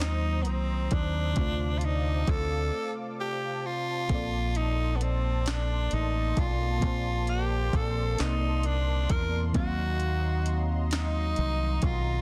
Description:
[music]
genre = slow six-eight R&B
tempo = 44 BPM (dotted quarters)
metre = 6/8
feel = straight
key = Bb major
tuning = A4 = 442 Hz
[part]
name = raspy tenor saxophone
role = melody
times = 0.0-12.2 s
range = Cb4 to Bb4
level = -34 LUFS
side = equal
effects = delay
[part]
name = mellow FM electric piano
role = accompaniment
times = 0.0-12.2 s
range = Bb2 to A5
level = -39 LUFS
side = equal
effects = chorus, phaser
[part]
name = warm analog pad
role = sustained chords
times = 0.0-12.2 s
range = Gb3 to Eb6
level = -42 LUFS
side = equal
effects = chorus
[part]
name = deep dub fingered electric bass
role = bass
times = 0.0-12.2 s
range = A1 to E2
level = -31 LUFS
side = equal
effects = none
[part]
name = smooth R&B drum kit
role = drums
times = 0.0-12.0 s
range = hi-hat, kick drum, snare drum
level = -33 LUFS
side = equal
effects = overdrive
[sound]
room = digital ambience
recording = dense, heavily limited modern master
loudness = -28 LUFS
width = mono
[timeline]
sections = 0.0-12.2 A section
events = break 2.7-4.1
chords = 0.0 Ebm6; 1.4 Dm7; 4.1 Bbmaj9; 9.5 Ebm6

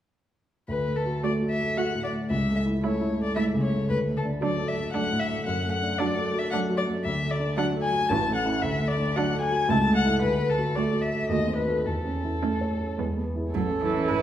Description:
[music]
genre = quick classical-period movement for piano quartet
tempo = 113 BPM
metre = 3/4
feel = rubato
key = D major, A major from 7.0 s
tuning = A4 = 437 Hz
[part]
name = warm violin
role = melody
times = 0.7-14.2 s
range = A4 to A5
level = -28 LUFS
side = left 3 dB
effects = none
[part]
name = warm baby grand piano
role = accompaniment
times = 0.7-14.2 s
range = A1 to C#5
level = -26 LUFS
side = equal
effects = none
[part]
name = rich cello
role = second line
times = 1.2-14.2 s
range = E3 to E4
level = -31 LUFS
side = right 4 dB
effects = none
[part]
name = rich viola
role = accompaniment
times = 1.2-14.2 s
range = B3 to B4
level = -33 LUFS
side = right 3 dB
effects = none
[sound]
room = wet recital hall reverb, RT60 1.8 s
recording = heard from further back in the room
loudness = -23 LUFS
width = side -11 dB against mid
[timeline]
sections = 0.7-13.5 A section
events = none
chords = 0.7 D; 2.3 A/C#; 3.9 D; 5.5 D/F#; 7.0 D; 8.1 A; 8.6 D; 9.7 A/C#; 10.2 D; 11.3 D#dim7; 11.9 A/E; 13.0 E; 13.5 A

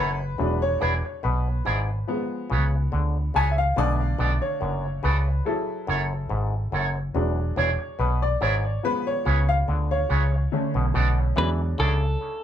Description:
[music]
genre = reggae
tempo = 71 BPM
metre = 4/4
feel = straight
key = unclear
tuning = A4 = 440 Hz
[part]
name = electric guitar with an envelope filter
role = accompaniment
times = 0.0-11.9 s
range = E4 to D5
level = -28 LUFS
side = right 6 dB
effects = none
[part]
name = auto-wah clav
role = riff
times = 0.0-12.0 s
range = E2 to E3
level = -33 LUFS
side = left 3 dB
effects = tape echo
[part]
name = clear upright piano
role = stabs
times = 0.0-12.0 s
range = D3 to G#5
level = -27 LUFS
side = left 2 dB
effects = tape echo
[part]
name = vintage muted fingered electric bass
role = bass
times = 0.0-12.2 s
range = E1 to E2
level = -24 LUFS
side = equal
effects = none
[part]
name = clean electric guitar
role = melody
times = 11.4-12.4 s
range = A4 to B4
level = -27 LUFS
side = equal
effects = none
[sound]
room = moderate small room reverb, RT60 0.6 s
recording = band playing live in one room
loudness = -22 LUFS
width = side -10 dB against mid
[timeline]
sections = 0.0-12.2 A section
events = upright piano solo 0.0-12.2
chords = 0.4 E7; 2.1 C#7; 3.8 Bm7; 5.5 F#m7; 7.1 E7; 8.8 C#7; 10.5 Bm7; 11.4 E7

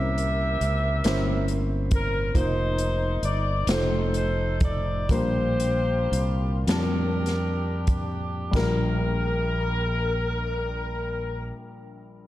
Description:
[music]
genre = slow gospel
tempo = 29-46 BPM (dotted quarters)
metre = 6/8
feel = straight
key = Bb major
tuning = A4 = 441 Hz
[part]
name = warm saxophone section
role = melody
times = 0.0-11.5 s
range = D4 to E5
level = -28 LUFS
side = left 1 dB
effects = none
[part]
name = dark upright piano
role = accompaniment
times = 0.0-12.3 s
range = Bb1 to A5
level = -31 LUFS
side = left 1 dB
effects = none
[part]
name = fingered electric bass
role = bass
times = 0.0-11.5 s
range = F1 to F2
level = -26 LUFS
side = equal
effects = none
[part]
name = swinging big-band drum kit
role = drums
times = 0.2-8.9 s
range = hi-hat, kick drum, snare drum, splash cymbal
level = -28 LUFS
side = equal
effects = none
[sound]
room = little or no reverb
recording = dark, warm production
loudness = -23 LUFS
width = side -14 dB against mid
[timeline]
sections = 0.0-8.5 A section; 8.5-12.3 B section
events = slowing down 2.3-8.5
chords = 0.0 C7b9; 2.3 F7sus4; 3.7 F7; 5.1 Bb6

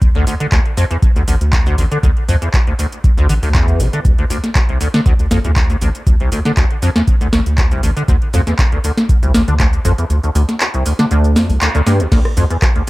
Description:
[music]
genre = acid house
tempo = 119 BPM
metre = 4/4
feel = swing 53% on 16ths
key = D minor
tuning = A4 = 444 Hz
[part]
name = round analog bass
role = bass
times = 0.0-12.5 s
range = A1 to D2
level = -17 LUFS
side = equal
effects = sidechain pumping
[part]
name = booming analog drum machine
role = drums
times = 0.0-12.9 s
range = cabasa, crash cymbal, handclaps, hi-hat, rim click, snare drum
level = -19 LUFS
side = equal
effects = overdrive
[part]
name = electronic kick drum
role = drums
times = 0.0-12.7 s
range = none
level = -14 LUFS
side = equal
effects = overdrive
[part]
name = liquid acid bass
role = riff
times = 0.2-12.9 s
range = C2 to D3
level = -16 LUFS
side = equal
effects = tube saturation, ensemble chorus, analog delay
[sound]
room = little or no reverb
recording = none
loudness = -12 LUFS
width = side -19 dB against mid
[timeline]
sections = 0.0-12.1 A section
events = kick drops out 10.1-12.1; band accent 11.6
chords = none

